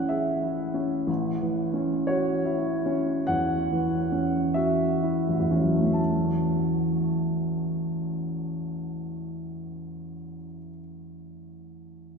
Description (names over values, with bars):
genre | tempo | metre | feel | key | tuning
classical, impressionist solo piano | 41-61 BPM | 4/4 | rubato | A major | A4 = 440 Hz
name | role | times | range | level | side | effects
warm baby grand piano | solo | 0.0-12.2 s | A1 to A5 | -25 LUFS | equal | none
room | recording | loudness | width
wet cathedral reverb, RT60 5.6 s | recorded in a church or concert hall | -24 LUFS | side -5 dB against mid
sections
0.0-6.0 A section; 6.0-10.9 B section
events
slowing down 0.0-6.0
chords
0.0 C#m/A; 1.1 A6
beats
0.09 | 1.08 2.10 3.31 4.59 | 5.97 7.23 8.45 9.70